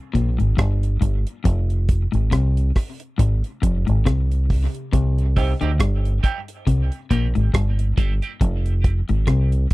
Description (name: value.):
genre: dub reggae.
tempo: 69 BPM.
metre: 4/4.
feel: swing 57% on 16ths.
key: unclear.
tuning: A4 = 445 Hz.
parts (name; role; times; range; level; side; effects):
electric guitar at the edge of break-up; riff; 0.1-9.5 s; F2 to D3; -25 LUFS; left 3 dB; spring reverb, dub echo.
deep reggae drum kit; drums; 0.1-9.7 s; hi-hat, kick drum, rim click; -20 LUFS; equal; none.
deep dub fingered electric bass; bass; 0.2-9.7 s; F1 to D2; -20 LUFS; equal; none.
electric guitar at the edge of break-up; accompaniment; 5.4-8.3 s; C4 to G4; -31 LUFS; right 6 dB; lush chorus, high-pass filter, dub echo.
room: little or no reverb.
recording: dry, close 1970s-style studio recording.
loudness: -18 LUFS.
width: side -20 dB against mid.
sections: 0.0-9.7 A section.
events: break 0.0-4.9.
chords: 0.0 N.C.; 1.5 Fm; 4.9 Cm; 8.4 Fm.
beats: 0.58 | 1.45 2.32 3.19 4.06 | 4.93 5.80 6.67 7.54 | 8.41 9.28.